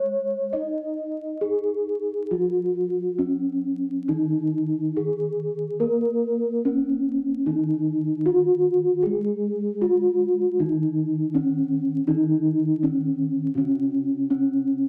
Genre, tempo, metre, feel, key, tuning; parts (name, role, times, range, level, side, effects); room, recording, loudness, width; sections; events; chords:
gamelan; 68-80 BPM; 4/4; straight; Eb slendro; A4 = 440 Hz
gamelan-type bronze metallophone; melody; 0.0-14.9 s; Db4-25c to Eb5; -24 LUFS; equal
gamelan-type bronze metallophone; accompaniment; 0.0-14.9 s; Db3-25c to Eb4; -32 LUFS; equal
moderate large studio reverb, RT60 0.9 s; vinyl crackle; -24 LUFS; mono
0.0-10.6 A section; 10.6-14.9 B section